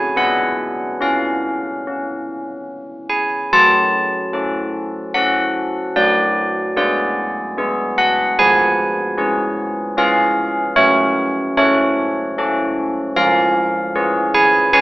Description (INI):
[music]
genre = classical, tune for church bells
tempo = 74 BPM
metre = 3/4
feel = straight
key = F# minor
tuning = A4 = 440 Hz
[part]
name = carillon bells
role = solo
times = 0.0-14.8 s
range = E#3 to A5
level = -14 LUFS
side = equal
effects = none
[sound]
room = wet stone room reverb, RT60 1.2 s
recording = AM radio sound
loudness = -14 LUFS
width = side -19 dB against mid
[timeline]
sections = 0.0-3.5 A section; 3.5-14.8 B section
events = none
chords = 0.2 G#dim/B; 1.0 N.C.; 3.5 F#m; 6.0 G#m7b5/F#; 8.4 C#/E#; 10.8 F#m; 13.2 C#/E#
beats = 0.17 | 1.01 1.85 2.69 | 3.53 4.34 5.15 | 5.96 6.77 7.58 | 8.38 9.19 9.98 | 10.78 11.58 12.39 | 13.17 13.96 14.75